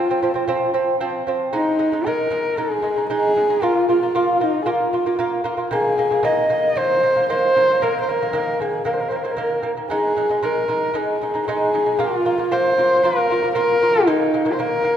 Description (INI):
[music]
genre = mongolian traditional, Mongolian folk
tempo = 115 BPM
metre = 4/4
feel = straight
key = unclear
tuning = A4 = 443 Hz
[part]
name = dark horsehead fiddle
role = melody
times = 0.0-15.0 s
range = Eb4 to Eb5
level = -18 LUFS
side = equal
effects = none
[part]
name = lute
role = arpeggios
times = 0.0-15.0 s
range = Eb3 to F4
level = -22 LUFS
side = right 1 dB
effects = none
[sound]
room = wet concert hall reverb, RT60 2.4 s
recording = minimal, uncompressed stereo recording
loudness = -17 LUFS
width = side -9 dB against mid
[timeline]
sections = 0.0-1.5 A section; 1.5-15.0 B section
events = none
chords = 0.0 F5; 1.5 Ab5; 3.6 Bb5; 5.7 Eb5; 9.9 Ab5; 12.0 Bb5; 14.1 Eb5